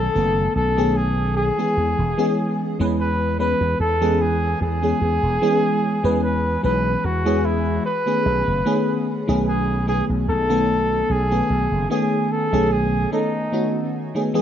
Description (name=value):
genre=vaporwave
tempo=74 BPM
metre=4/4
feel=straight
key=E major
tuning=A4 = 440 Hz
part: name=warm flugelhorn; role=melody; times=0.0-13.9 s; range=D#4 to B4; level=-23 LUFS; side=left 1 dB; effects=vintage 12-bit sampler grit, plate reverb, tape echo
part: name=FM electric piano with soft pad layer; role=accompaniment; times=0.0-14.4 s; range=D#3 to B4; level=-21 LUFS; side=equal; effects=ensemble chorus
part: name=slap bass with an envelope filter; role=bass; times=0.0-13.0 s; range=E1 to E2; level=-23 LUFS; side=right 1 dB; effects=none
room=light reverb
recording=rough home demo mix, cassette tape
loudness=-18 LUFS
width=side -9 dB against mid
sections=0.0-14.4 A section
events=break 13.1-14.4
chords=0.0 B13; 1.8 E6; 7.9 B13